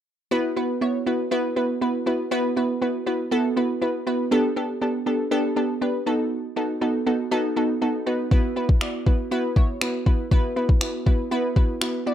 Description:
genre	dance-pop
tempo	120 BPM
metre	4/4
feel	straight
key	E minor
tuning	A4 = 440 Hz
part	glassy wavetable pluck	accompaniment	0.3-12.1 s	B3 to D5	-22 LUFS	right 1 dB	chorus, sidechain pumping
part	smooth R&B drum kit	drums	8.3-11.9 s	finger snaps, kick drum	-19 LUFS	equal	none
room	light reverb, digital ambience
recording	none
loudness	-21 LUFS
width	side -10 dB against mid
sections	0.3-12.1 A section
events	none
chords	0.3 Esus2; 4.3 Gadd9; 6.1 B7; 8.3 Esus2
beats	| 0.32 0.81 1.31 1.81 | 2.31 2.81 3.31 3.81 | 4.32 4.82 5.32 5.82 | 6.32 6.82 7.32 7.82 | 8.31 8.81 9.31 9.81 | 10.31 10.81 11.31 11.81

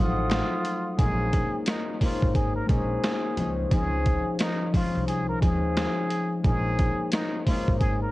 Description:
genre	hip hop, boom-bap hip-hop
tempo	88 BPM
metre	4/4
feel	swing 63% on 16ths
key	Bb minor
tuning	A4 = 439 Hz
part	trumpet with plunger mute	melody	0.0-8.1 s	Eb4 to Bb4	-31 LUFS	equal	high-pass filter, low-pass filter, tape echo
part	concert harp	accompaniment	0.0-8.1 s	F3 to F4	-28 LUFS	left 2 dB	high-pass filter, low-pass filter, cassette tape
part	dark analog pad	sustained chords	0.0-1.0 s	A4 to Eb6	-33 LUFS	right 1 dB	chorus, high-pass filter, low-pass filter, cassette tape
part	upright bass	bass	0.0-8.0 s	Ab1 to Eb2	-29 LUFS	equal	none
part	boom bap sampler-style drum kit	drums	0.3-8.0 s	hi-hat, kick drum, snare drum	-26 LUFS	equal	none
part	finger snap	percussion	0.3-0.5 s	none	-37 LUFS	left 9 dB	none
room	little or no reverb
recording	home recording on cassette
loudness	-23 LUFS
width	side -18 dB against mid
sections	1.0-8.1 A section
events	none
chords	0.0 F7b9; 1.0 Bbm11; 3.4 Dbmaj9; 6.4 Bbm11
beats	0.31 | 0.99 1.67 2.35 3.03 | 3.71 4.40 5.08 5.76 | 6.44 7.12 7.81

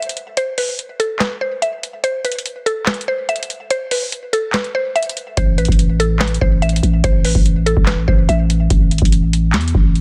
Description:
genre	hip hop, trap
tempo	144 BPM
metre	4/4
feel	half-time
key	A minor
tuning	A4 = 440 Hz
part	mallet-like synth pluck	melody	0.0-8.7 s	A4 to E5	-23 LUFS	equal	chorus, low-pass filter, tape echo
part	booming analog drum machine	drums	0.0-10.0 s	handclaps, hi-hat, kick drum, snare drum	-19 LUFS	equal	vintage 12-bit sampler grit
part	growling 808-style bass	bass	5.4-10.0 s	G#1 to E2	-18 LUFS	equal	none
room	little or no reverb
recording	dense, heavily limited modern master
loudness	-17 LUFS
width	mono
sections	0.0-10.0 A section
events	break 0.0-5.4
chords	0.0 N.C.; 5.4 Asus2; 8.7 A5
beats	| 0.37 0.79 1.21 1.62 | 2.04 2.46 2.87 3.29 | 3.71 4.12 4.54 4.96 | 5.37 5.79 6.21 6.62 | 7.04 7.46 7.87 8.29 | 8.71 9.12 9.54 9.96

